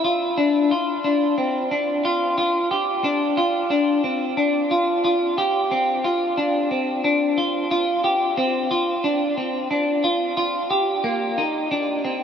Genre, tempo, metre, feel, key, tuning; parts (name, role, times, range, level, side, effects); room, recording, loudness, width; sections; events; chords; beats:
dream pop; 90 BPM; 4/4; straight; A4 = 437 Hz
semi-hollow electric guitar; solo; 0.0-12.2 s; Bb3 to G4; -19 LUFS; equal; wide subtle chorus, analog delay
wet huge ambient reverb, RT60 9.0 s; dreamy mix soaked in reverb; -19 LUFS; side -8 dB against mid
0.4-12.2 A section
| 0.38 1.04 1.71 2.38 | 3.04 3.71 4.38 5.04 | 5.71 6.38 7.04 7.71 | 8.38 9.04 9.71 10.38 | 11.04 11.71